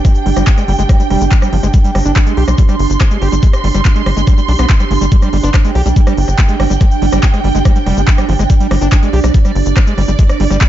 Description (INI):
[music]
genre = psychedelic trance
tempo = 142 BPM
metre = 4/4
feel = straight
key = G major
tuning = A4 = 440 Hz
[part]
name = evolving wavetable pad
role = sustained chords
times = 0.0-10.7 s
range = D4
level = -20 LUFS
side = right 10 dB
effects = chorus, built-in reverb, sidechain pumping
[part]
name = overdriven acid bass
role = riff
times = 0.0-10.6 s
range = F3 to G4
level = -20 LUFS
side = left 1 dB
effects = distortion, auto-pan, sidechain pumping, ping-pong delay
[part]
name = big-room dance drum kit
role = drums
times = 0.0-10.7 s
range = handclaps, hi-hat, rim click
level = -22 LUFS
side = equal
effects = none
[part]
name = electronic kick drum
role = drums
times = 0.0-10.7 s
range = none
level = -10 LUFS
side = equal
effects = none
[part]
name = egg shaker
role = percussion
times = 0.0-10.7 s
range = none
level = -32 LUFS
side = left 7 dB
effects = none
[part]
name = dark symphonic string section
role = texture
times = 0.0-10.7 s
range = D4 to C6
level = -21 LUFS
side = right 3 dB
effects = sidechain pumping
[part]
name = tight sequencer bass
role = bass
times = 0.3-10.6 s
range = F1 to B1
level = -13 LUFS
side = equal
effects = none
[part]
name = resonant blip pluck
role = second line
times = 0.4-0.5, 5.4-7.7 s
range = F3 to F4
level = -31 LUFS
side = left 2 dB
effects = none
[sound]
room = digital ambience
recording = dark, warm production, nothing above 7.6 kHz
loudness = -9 LUFS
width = side -12 dB against mid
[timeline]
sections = 0.0-10.7 A section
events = none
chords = 0.0 G5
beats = | 0.05 0.47 0.89 1.32 | 1.74 2.16 2.58 3.01 | 3.43 3.85 4.27 4.70 | 5.12 5.54 5.96 6.39 | 6.81 7.23 7.65 8.08 | 8.50 8.92 9.34 9.77 | 10.19 10.61